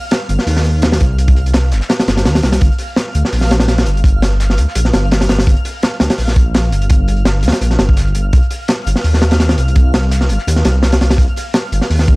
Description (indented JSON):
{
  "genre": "drum and bass, jungle",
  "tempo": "168 BPM",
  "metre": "4/4",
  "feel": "swing 53% on 16ths",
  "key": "G minor",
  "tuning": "A4 = 438 Hz",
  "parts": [
    { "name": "twinkling granular texture", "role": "texture", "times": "0.0-12.2 s", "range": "F5 to F6", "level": "-28 LUFS", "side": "right 1 dB", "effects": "built-in reverb" },
    { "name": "cloth-damped thuddy drum kit", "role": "drums", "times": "0.1-12.2 s", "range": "hi-hat, snare drum", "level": "-31 LUFS", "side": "left 1 dB", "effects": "none" },
    { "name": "crunchy breakbeat drum kit", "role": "drums", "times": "0.1-12.2 s", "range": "hi-hat, kick drum, snare drum", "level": "-13 LUFS", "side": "equal", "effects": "none" },
    { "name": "dark detuned saw bass", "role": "bass", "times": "0.3-12.2 s", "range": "G1 to Eb2", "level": "-13 LUFS", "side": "equal", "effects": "none" }
  ],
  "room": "little or no reverb",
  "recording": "dry, gritty hardware recording, vinyl crackle",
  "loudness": "-11 LUFS",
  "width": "side -24 dB against mid",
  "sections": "0.0-12.2 A section",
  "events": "none",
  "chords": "0.0 Cmadd11; 2.6 Gm7; 8.3 Cm"
}